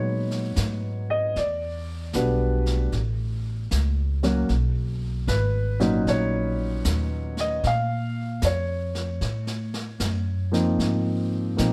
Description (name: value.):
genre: jazz ballad.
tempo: 76 BPM.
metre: 4/4.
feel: swing 67% on 8ths.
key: unclear.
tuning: A4 = 440 Hz.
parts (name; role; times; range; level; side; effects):
warm grand piano; accompaniment; 0.0-11.7 s; A#2 to E#5; -28 LUFS; equal; none.
upright bass; bass; 0.0-11.7 s; G#1 to A#2; -28 LUFS; equal; none.
jazz brush drum kit; drums; 0.3-11.7 s; brushed snare drum, hi-hat, snare drum; -37 LUFS; equal; none.
room: light reverb.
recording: none.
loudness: -25 LUFS.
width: mono.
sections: 0.0-11.7 A section.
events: none.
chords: 0.0 G#m9; 1.4 Em7; 2.9 A; 4.5 Bmaj7; 7.6 A#m; 9.2 A; 10.8 G#69.